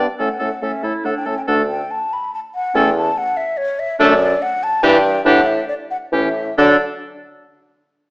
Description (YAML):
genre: quick classical-period movement for wind quintet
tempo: 130-145 BPM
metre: 3/4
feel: straight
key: D major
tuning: A4 = 438 Hz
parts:
  - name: mellow hollow concert flute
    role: melody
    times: 0.0-6.8 s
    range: C#5 to B5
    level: -20 LUFS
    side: left 1 dB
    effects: none
  - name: clear oboe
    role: second line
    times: 0.0-6.8 s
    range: G4 to A4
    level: -21 LUFS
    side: equal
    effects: none
  - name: warm French horn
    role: accompaniment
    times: 0.0-6.8 s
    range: E3 to A3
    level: -20 LUFS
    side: equal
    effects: none
  - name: warm clarinet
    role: accompaniment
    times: 0.0-6.8 s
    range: C#4 to E4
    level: -21 LUFS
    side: right 1 dB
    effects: none
  - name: warm bassoon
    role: bass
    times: 0.0-6.8 s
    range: D2 to D3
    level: -19 LUFS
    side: equal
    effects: none
room: wet recital hall reverb, RT60 1.4 s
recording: small speaker sound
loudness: -15 LUFS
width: side -25 dB against mid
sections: 0.0-6.6 A section; 6.6-7.9 B section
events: slowing down 3.4-6.6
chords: 0.2 A; 1.5 D5; 2.7 A/E; 4.0 D/F#; 4.8 Em7/G; 5.3 Asus4; 6.1 A7; 6.6 D